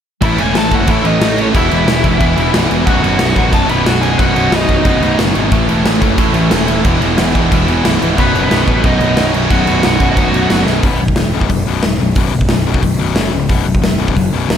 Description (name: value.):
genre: punk rock.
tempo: 181 BPM.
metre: 4/4.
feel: straight.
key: B mixolydian, B major from 10.8 s.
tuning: A4 = 440 Hz.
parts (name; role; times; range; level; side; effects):
nasal lead guitar with a parked wah; melody; 0.2-5.2, 8.2-10.6 s; B3 to B5; -18 LUFS; left 1 dB; overdrive.
crunchy overdriven guitar; riff; 0.2-10.8 s; B1 to A3; -19 LUFS; right 11 dB; none.
distorted electric guitar; riff; 0.2-14.6 s; B1 to A3; -18 LUFS; left 10 dB; overdrive.
high-gain distorted guitar; riff; 0.2-11.0 s; B1 to A4; -19 LUFS; equal; distortion.
fuzz picked electric bass; bass; 0.2-14.6 s; B0 to A1; -18 LUFS; equal; overdrive.
big rock drum kit; drums; 0.2-14.6 s; crash cymbal, hi-hat, kick drum, snare drum; -15 LUFS; right 1 dB; none.
room: little or no reverb.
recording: none.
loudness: -10 LUFS.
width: side -8 dB against mid.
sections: 0.2-10.8 A section; 10.8-14.6 B section.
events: drum fill 10.7.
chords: 0.2 A; 1.5 E; 2.9 B; 5.5 A; 6.9 E; 8.2 B; 10.8 B5; 13.2 F#5; 13.5 B5.